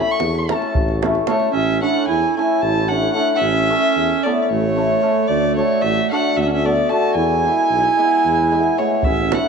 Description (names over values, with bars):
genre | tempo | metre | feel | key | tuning
balkan folk, Balkan wedding band | 224 BPM (eighths) | 7/8 | straight | A major | A4 = 438 Hz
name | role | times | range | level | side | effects
dark violin | melody | 0.0-9.5 s | C#5 to C#6 | -20 LUFS | equal | slapback echo
hammered dulcimer | accompaniment | 0.0-9.5 s | G#3 to A4 | -21 LUFS | left 4 dB | none
davul | percussion | 0.1-1.5, 9.0-9.5 s | none | -22 LUFS | right 3 dB | none
warm tuba | bass | 0.2-9.4 s | A1 to E2 | -22 LUFS | left 1 dB | none
mellow clarinet | second line | 1.3-9.5 s | A3 to F#4 | -21 LUFS | right 12 dB | none
room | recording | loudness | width
moderate plate reverb, RT60 2.4 s | 1960s-style stereo | -15 LUFS | side -5 dB against mid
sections
0.0-1.5 A section; 1.5-9.5 B section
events
violin solo 0.0-1.5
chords
0.0 A; 5.3 D; 7.2 E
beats
0.20 0.47 0.73 1.00 1.27 | 1.54 1.81 2.07 2.34 2.61 2.88 3.15 | 3.41 3.68 3.95 4.22 4.49 4.75 5.02 | 5.29 5.56 5.82 6.09 6.36 6.63 6.89 | 7.16 7.43 7.70 7.96 8.23 8.50 8.77 | 9.03 9.30